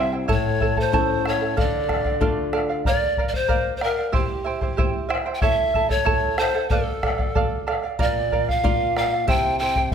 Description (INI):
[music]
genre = andean folk, Andean ensemble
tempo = 93 BPM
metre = 2/4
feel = straight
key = D minor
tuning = A4 = 441 Hz
[part]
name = breathy mellow pan flute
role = melody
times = 0.0-9.9 s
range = G4 to G5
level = -24 LUFS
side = equal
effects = none
[part]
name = charango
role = accompaniment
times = 0.0-9.9 s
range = E4 to A5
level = -25 LUFS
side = right 6 dB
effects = none
[part]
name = flamenco guitar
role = accompaniment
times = 0.0-2.8, 8.0-9.9 s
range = A2 to F4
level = -26 LUFS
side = left 5 dB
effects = none
[part]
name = bombo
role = percussion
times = 0.3-9.9 s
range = none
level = -24 LUFS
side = left 2 dB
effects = none
[sound]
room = light reverb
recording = close, detailed microphones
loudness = -19 LUFS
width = side -7 dB against mid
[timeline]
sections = 0.0-2.9 A section; 2.9-9.9 A section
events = none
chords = 0.3 A; 1.6 Dm; 2.9 Bb; 4.1 C; 5.4 A; 6.7 Dm; 8.0 Bb; 9.3 C